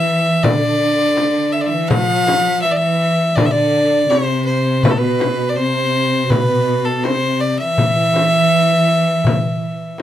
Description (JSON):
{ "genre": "Arabic maqam ensemble", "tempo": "82 BPM", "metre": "4/4", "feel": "straight", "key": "E maqam hijaz", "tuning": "A4 = 443 Hz", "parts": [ { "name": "clear violin", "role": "melody", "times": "0.0-10.0 s", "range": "A4 to F5+37c", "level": "-16 LUFS", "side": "left 1 dB", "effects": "none" }, { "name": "clear studio cello section", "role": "second line", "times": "0.0-10.0 s", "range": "B2 to F3+25c", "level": "-18 LUFS", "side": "right 1 dB", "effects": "none" }, { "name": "darbuka", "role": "percussion", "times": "0.1-10.0 s", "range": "none", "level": "-21 LUFS", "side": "left 1 dB", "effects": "none" }, { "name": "frame drum", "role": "percussion", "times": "0.4-10.0 s", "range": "none", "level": "-21 LUFS", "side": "left 3 dB", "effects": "none" } ], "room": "moderate studio ambience, RT60 0.5 s", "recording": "none", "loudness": "-13 LUFS", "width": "side -11 dB against mid", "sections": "0.0-10.0 A section", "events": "none", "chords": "none" }